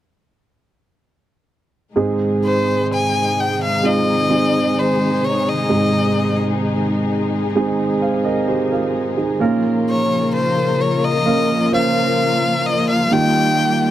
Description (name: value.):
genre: pop.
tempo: 65 BPM.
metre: 4/4.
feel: straight.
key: Ab major.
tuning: A4 = 435 Hz.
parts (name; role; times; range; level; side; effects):
warm studio string section; sustained chords; 1.9-13.9 s; C3 to Bb4; -21 LUFS; left 3 dB; none.
dark concert grand piano; accompaniment; 2.0-13.9 s; Ab2 to F5; -18 LUFS; right 3 dB; none.
bright violin; melody; 2.4-13.9 s; C5 to Ab5; -19 LUFS; left 2 dB; none.
room: little or no reverb.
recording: dry, close 1970s-style studio recording.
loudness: -15 LUFS.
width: side -12 dB against mid.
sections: 1.9-13.9 A section.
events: none.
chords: 1.9 Ab; 9.4 Bbm; 13.1 Ebadd9.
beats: | 1.95 2.89 3.83 4.76 | 5.70 6.63 7.56 8.48 | 9.40 10.33 11.25 12.18 | 13.11.